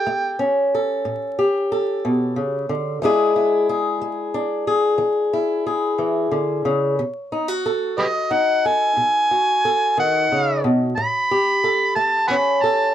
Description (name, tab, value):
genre	acoustic country blues, solo or duo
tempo	60 BPM (dotted quarters)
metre	12/8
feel	straight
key	E mixolydian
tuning	A4 = 444 Hz
part	overdriven harmonica	melody	0.0-0.4, 8.0-12.9 s	G4 to B5	-18 LUFS	right 1 dB	plate reverb
part	fingerpicked swing-style acoustic guitar	accompaniment	0.0-12.9 s	A2 to A4	-19 LUFS	left 1 dB	none
room	wet booth ambience, RT60 0.2 s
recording	dark, warm production, vinyl crackle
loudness	-17 LUFS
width	side -11 dB against mid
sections	0.0-12.9 A section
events	none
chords	0.0 A7; 3.0 E7; 7.0 B7; 11.0 A7